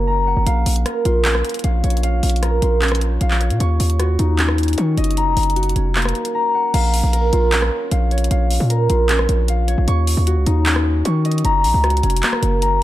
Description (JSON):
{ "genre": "hip hop, trap", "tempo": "153 BPM", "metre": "4/4", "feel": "half-time", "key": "Bb minor", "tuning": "A4 = 442 Hz", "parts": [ { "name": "concert harp", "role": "arpeggios", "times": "0.0-12.8 s", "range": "Bb3 to Db6", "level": "-20 LUFS", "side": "left 1 dB", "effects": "tape echo" }, { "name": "hard-hitting 808-style bass", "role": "bass", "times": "0.0-12.8 s", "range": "F1 to Eb3", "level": "-17 LUFS", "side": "equal", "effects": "none" }, { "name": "trap drum kit", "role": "drums", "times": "0.5-12.7 s", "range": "crash cymbal, handclaps, hi-hat, rim click", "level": "-23 LUFS", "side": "equal", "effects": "none" } ], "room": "little or no reverb", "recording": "dark, warm production", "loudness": "-15 LUFS", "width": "side -14 dB against mid", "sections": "0.0-6.7 A section; 6.7-12.8 B section", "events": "none", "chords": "0.5 Bbm; 3.6 Ebm7; 5.2 Gb; 6.7 Bbm; 9.9 Ebm7; 11.4 Gb", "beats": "0.07 | 0.47 0.86 1.25 1.64 | 2.03 2.43 2.82 3.21 | 3.60 4.00 4.39 4.78 | 5.17 5.56 5.96 6.35 | 6.74 7.13 7.52 7.92 | 8.31 8.70 9.09 9.48 | 9.88 10.27 10.66 11.05 | 11.45 11.84 12.23 12.62" }